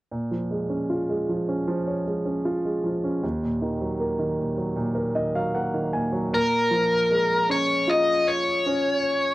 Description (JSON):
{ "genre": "pop", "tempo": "77 BPM", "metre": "4/4", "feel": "straight", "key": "Bb minor", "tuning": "A4 = 440 Hz", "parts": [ { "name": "warm baby grand piano", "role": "accompaniment", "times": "0.1-9.3 s", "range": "Eb2 to Ab5", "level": "-24 LUFS", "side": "right 1 dB", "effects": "cassette tape" }, { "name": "smooth overdriven lead guitar", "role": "melody", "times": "6.3-9.3 s", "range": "Bb4 to Eb5", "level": "-20 LUFS", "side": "left 1 dB", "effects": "cassette tape" } ], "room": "light reverb", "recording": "home recording on cassette", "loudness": "-22 LUFS", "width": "side -17 dB against mid", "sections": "0.1-6.3 A section; 6.3-9.3 B section", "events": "grand piano fill 4.8-6.3", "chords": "0.1 Bbm7; 3.2 Ebm; 6.3 Bbm7", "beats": "| 0.12 0.90 1.68 2.45 | 3.23 4.00 4.77 5.54 | 6.32 7.10 7.88 8.66" }